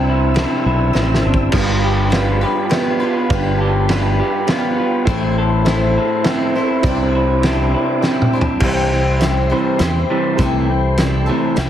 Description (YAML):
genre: folk rock and heartland rock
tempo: 102 BPM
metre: 3/4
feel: straight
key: C major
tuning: A4 = 440 Hz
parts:
  - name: picked twelve-string acoustic guitar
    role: accompaniment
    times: 0.0-11.7 s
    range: A2 to C5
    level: -22 LUFS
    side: left 4 dB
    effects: none
  - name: tonewheel organ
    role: sustained chords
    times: 0.0-11.7 s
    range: F4 to E6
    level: -28 LUFS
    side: equal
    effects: slow rotary speaker, overdrive, chorus vibrato
  - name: electric guitar through a small old amp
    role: riff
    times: 0.0-11.7 s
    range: G2 to A4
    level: -19 LUFS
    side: right 1 dB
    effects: none
  - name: fingered electric bass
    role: bass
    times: 0.0-11.7 s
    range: G1 to E2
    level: -18 LUFS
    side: equal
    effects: none
  - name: loose indie drum kit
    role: drums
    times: 0.4-11.7 s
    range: crash cymbal, hi-hat, kick drum, ride cymbal, snare drum, toms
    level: -20 LUFS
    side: equal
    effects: none
  - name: barky reed electric piano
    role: accompaniment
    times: 1.5-11.7 s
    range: E4 to B5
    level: -26 LUFS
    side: right 12 dB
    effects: overdrive, fast tremolo
room: little or no reverb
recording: heavily compressed radio sound, multiband compression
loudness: -14 LUFS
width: side -10 dB against mid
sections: 0.0-8.6 A section; 8.6-11.7 B section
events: drum fill 0.9-1.5, 8.0-8.6; reed electric piano fill 3.3-5.1, 11.0-11.7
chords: 0.0 Cadd9; 1.5 G7; 5.1 Am; 6.8 Cadd9; 8.6 C; 10.4 Am7/C